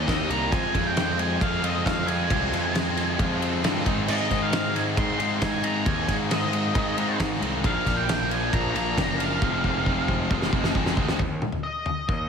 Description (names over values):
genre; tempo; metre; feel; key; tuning
quiet-loud alternative rock; 135 BPM; 4/4; straight; F dorian; A4 = 440 Hz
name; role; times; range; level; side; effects
octave-fuzz lead guitar; melody; 0.0-12.3 s; Eb5 to C6; -29 LUFS; equal; distortion, slapback echo
crunchy overdriven guitar; riff; 0.0-11.2 s; F2 to G4; -31 LUFS; equal; slapback echo
high-gain distorted guitar; riff; 0.0-11.2 s; F2 to F4; -32 LUFS; left 10 dB; distortion, slapback echo
high-gain distorted guitar; riff; 0.0-11.2 s; F2 to F4; -32 LUFS; right 10 dB; distortion, slapback echo
fuzz picked electric bass; bass; 0.0-12.3 s; F1 to Ab2; -29 LUFS; equal; overdrive
loose indie drum kit; drums; 0.1-12.2 s; crash cymbal, kick drum, ride cymbal, snare drum, toms; -27 LUFS; equal; none
room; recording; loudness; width
moderate lush hall reverb, RT60 1.8 s, small room ambience; big arena sound; -22 LUFS; side -6 dB against mid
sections
0.0-11.2 A section; 11.2-12.3 B section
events
drum fill 9.4-11.2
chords
0.0 Eb; 0.5 Fm; 3.9 Ab; 7.6 Bb; 9.4 Fm; 11.2 N.C.